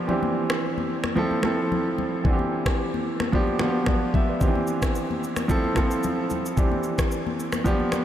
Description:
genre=afrobeats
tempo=111 BPM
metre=4/4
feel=straight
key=C major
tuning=A4 = 440 Hz
part: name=clear grand piano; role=accompaniment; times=0.0-8.0 s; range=Eb3 to E5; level=-24 LUFS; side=right 1 dB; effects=none
part: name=congas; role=percussion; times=0.1-8.0 s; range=none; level=-31 LUFS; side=left 6 dB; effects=none
part: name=afro-pop drum kit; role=drums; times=0.5-8.0 s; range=finger snaps, kick drum, rim click, shaker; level=-26 LUFS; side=equal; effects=none
room=moderate huge ambient reverb, RT60 8.1 s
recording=dreamy mix soaked in reverb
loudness=-22 LUFS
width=side -11 dB against mid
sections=0.0-8.0 A section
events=break 0.0-4.4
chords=0.1 Cadd9; 1.2 Fmaj7; 2.2 Cadd9; 3.3 G7; 4.4 Cadd9; 5.5 Fmaj7; 6.6 Cadd9

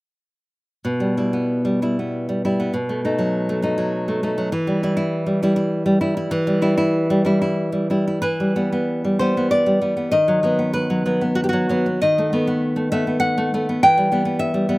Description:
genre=romantic piece for solo classical guitar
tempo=85-104 BPM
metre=3/4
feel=rubato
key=E minor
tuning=A4 = 438 Hz
part: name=nylon-string guitar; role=solo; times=0.8-14.8 s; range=B2 to G5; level=-17 LUFS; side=equal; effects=none
room=little or no reverb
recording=recorded outdoors, with no room sound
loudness=-17 LUFS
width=side -21 dB against mid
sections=0.8-8.2 A section; 8.2-14.8 B section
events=none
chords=0.8 Em/B; 2.7 B7; 4.5 Em; 10.1 B/D#; 12.0 B7/D#; 13.8 Em

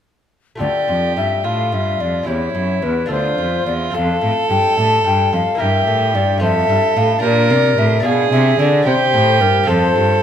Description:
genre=classical, baroque-style sonata movement with continuo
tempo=73 BPM (dotted quarters)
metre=6/8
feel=straight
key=D minor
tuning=A4 = 440 Hz
part: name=mellow hollow tenor recorder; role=melody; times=0.6-10.2 s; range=Bb4 to A5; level=-19 LUFS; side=left 8 dB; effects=none
part: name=rich violin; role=second line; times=0.6-10.2 s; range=E4 to Bb4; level=-18 LUFS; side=right 5 dB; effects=none
part: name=lute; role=accompaniment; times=0.6-10.2 s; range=D2 to C5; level=-24 LUFS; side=left 1 dB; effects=none
part: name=rich cello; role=bass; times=0.6-10.2 s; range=D2 to D3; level=-19 LUFS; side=right 1 dB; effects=none
room=moderate recital hall reverb, RT60 1.4 s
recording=none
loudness=-13 LUFS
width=side -9 dB against mid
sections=0.6-10.2 A section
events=none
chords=0.6 Dm; 2.3 C#dim/E; 3.1 Dm; 3.9 F; 5.6 Edim/G; 6.4 F; 7.2 Gm7/Bb; 8.1 Bdim7; 8.9 C; 9.7 F

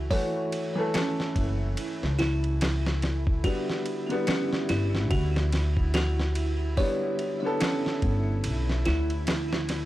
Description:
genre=trip hop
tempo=72 BPM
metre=4/4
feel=swing 59% on 16ths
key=unclear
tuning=A4 = 440 Hz
part: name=clear upright piano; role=accompaniment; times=0.0-9.9 s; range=D3 to A4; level=-32 LUFS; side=left 1 dB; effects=harmonic tremolo, tape echo
part: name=music box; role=arpeggios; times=0.0-9.9 s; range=C#4 to C#5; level=-32 LUFS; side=equal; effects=tape echo
part: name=upright bass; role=bass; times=0.0-9.9 s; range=F#1 to D2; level=-27 LUFS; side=equal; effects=none
part: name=bowed-like drone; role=texture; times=0.0-9.9 s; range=E4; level=-38 LUFS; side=right 4 dB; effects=built-in reverb
part: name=dusty soul sampler-style drum kit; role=drums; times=0.1-9.9 s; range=hi-hat, kick drum, ride cymbal, snare drum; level=-30 LUFS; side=equal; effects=small room ambience
room=studio ambience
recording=dry, gritty hardware recording, vinyl crackle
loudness=-24 LUFS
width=side -15 dB against mid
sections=0.0-9.9 A section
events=none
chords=0.0 F#m7; 3.4 G

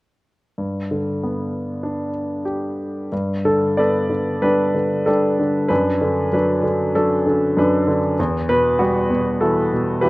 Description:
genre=classical, lyrical solo piano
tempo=95 BPM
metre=4/4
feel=uneven beats, rubato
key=G major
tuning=A4 = 440 Hz
part: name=clear grand piano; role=solo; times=0.6-10.1 s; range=E2 to D5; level=-17 LUFS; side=equal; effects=none
room=moderate recital hall reverb, RT60 1.5 s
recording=worn, warbling old tape, cassette tape, warbly pitch drift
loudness=-17 LUFS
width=side -20 dB against mid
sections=0.6-3.1 A section; 3.1-10.1 B section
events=none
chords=0.6 G; 3.1 Gadd9; 5.7 Bm7/F#; 8.2 Emadd9

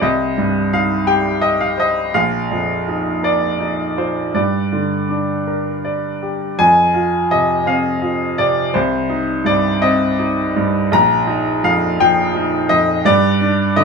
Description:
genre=classical, contemporary piece for solo upright piano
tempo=56 BPM (dotted quarters)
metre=6/8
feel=rubato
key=unclear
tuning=A4 = 442 Hz
part: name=clear upright piano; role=solo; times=0.0-13.8 s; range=Bb1 to Bb5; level=-14 LUFS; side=equal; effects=none
room=light reverb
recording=band playing live in one room, small room ambience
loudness=-14 LUFS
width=side -5 dB against mid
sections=0.0-6.6 A section; 6.6-13.8 B section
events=none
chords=0.0 Cm; 2.1 Bbsus4; 4.3 Gm; 6.6 Fm; 8.7 Cm; 10.9 Bbsus4; 13.0 G5

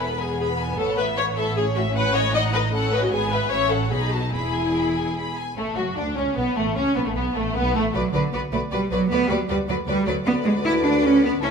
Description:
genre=quick classical-period movement for string orchestra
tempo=154 BPM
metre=3/4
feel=rubato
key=E major, D major from 5.6 s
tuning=A4 = 440 Hz
part: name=clear studio violin section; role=melody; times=0.0-11.5 s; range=A3 to B5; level=-29 LUFS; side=left 2 dB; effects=none
part: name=rich studio violin section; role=second line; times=0.0-11.5 s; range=A3 to B4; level=-28 LUFS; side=left 4 dB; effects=none
part: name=rich studio viola section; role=accompaniment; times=0.0-11.5 s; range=F#3 to D#5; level=-26 LUFS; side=left 2 dB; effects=none
part: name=rich studio cello section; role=bass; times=0.0-11.5 s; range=E2 to E4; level=-24 LUFS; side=right 2 dB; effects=none
part: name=rich studio double bass section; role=bass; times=0.0-11.5 s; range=E1 to D2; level=-29 LUFS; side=right 3 dB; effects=none
room=moderate recital hall reverb, RT60 1.8 s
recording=none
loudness=-20 LUFS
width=side -6 dB against mid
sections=0.0-5.6 A section; 5.6-11.5 B section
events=none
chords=0.0 E; 0.8 A; 2.0 B9/A; 3.1 E/G#; 3.5 F#m7/A; 3.9 B7; 4.3 E; 5.6 D; 6.8 Aadd9; 7.9 Bm; 9.1 Bm/D

